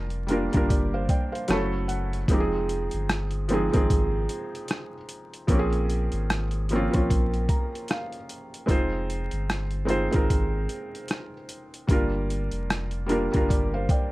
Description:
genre	lo-fi hip hop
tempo	75 BPM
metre	4/4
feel	swing 59% on 16ths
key	F minor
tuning	A4 = 440 Hz
part	felt-muted upright piano	accompaniment	0.0-14.1 s	F3 to Bb5	-27 LUFS	right 1 dB	low-pass filter
part	warm sub bass	bass	0.0-13.9 s	F1 to Bb1	-29 LUFS	equal	none
part	boom bap sampler-style drum kit	drums	0.1-14.1 s	hi-hat, kick drum, rim click	-25 LUFS	equal	none
room	light reverb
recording	vinyl crackle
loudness	-23 LUFS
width	side -19 dB against mid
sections	0.0-14.1 A section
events	felt piano fill 1.1-2.3, 7.1-8.7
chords	0.0 Gm7; 1.5 Gbm7; 2.3 Fm7; 5.5 Bbm9; 8.7 Fm7; 11.9 Gm7

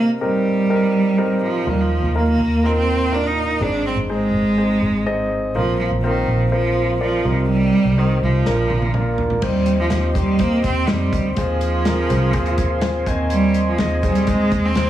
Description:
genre	piano-driven pop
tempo	124 BPM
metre	4/4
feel	straight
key	unclear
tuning	A4 = 440 Hz
part	clear cello	melody	0.0-14.9 s	Eb3 to Eb4	-20 LUFS	right 2 dB	none
part	warm baby grand piano	accompaniment	0.0-14.9 s	Ab2 to Ab5	-22 LUFS	left 2 dB	none
part	vintage muted fingered electric bass	bass	1.7-14.9 s	Ab1 to F2	-21 LUFS	equal	none
part	natural country drum kit	drums	8.5-14.9 s	crash cymbal, hi-hat, kick drum, snare drum, toms	-24 LUFS	equal	none
part	warm analog pad	sustained chords	9.4-14.9 s	G4 to C6	-30 LUFS	right 2 dB	chorus
room	moderate large studio reverb, RT60 0.8 s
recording	heavily compressed radio sound, multiband compression, small room ambience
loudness	-16 LUFS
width	side -12 dB against mid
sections	0.0-9.4 A section; 9.4-14.9 B section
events	drum fill 8.5-9.4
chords	0.0 Cm7; 1.7 Ebsus2; 3.6 Ab; 5.5 Bbsus2; 7.2 Cm7; 8.5 Bb; 9.4 Cm/Eb; 11.4 Fm; 13.1 Ab/Eb

